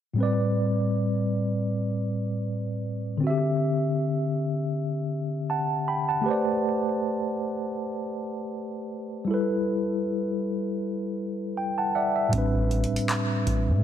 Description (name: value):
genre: contemporary R&B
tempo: 79 BPM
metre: 4/4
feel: swing 54% on 16ths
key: A dorian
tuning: A4 = 441 Hz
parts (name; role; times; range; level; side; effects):
- mellow tine electric piano; accompaniment; 0.1-13.8 s; A2 to B5; -25 LUFS; equal; fast stereo tremolo
- sub bass with octave; bass; 12.3-13.8 s; A1 to A2; -26 LUFS; equal; none
- booming analog drum machine; drums; 12.3-13.7 s; handclaps, hi-hat, kick drum; -29 LUFS; equal; none
room: moderate lush hall reverb, RT60 1.9 s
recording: none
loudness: -24 LUFS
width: side -10 dB against mid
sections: 0.2-13.8 A section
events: tine electric piano fill 11.2-12.3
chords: 0.2 Am11; 3.2 D9sus4; 6.3 Am11; 9.3 G69; 12.3 Am11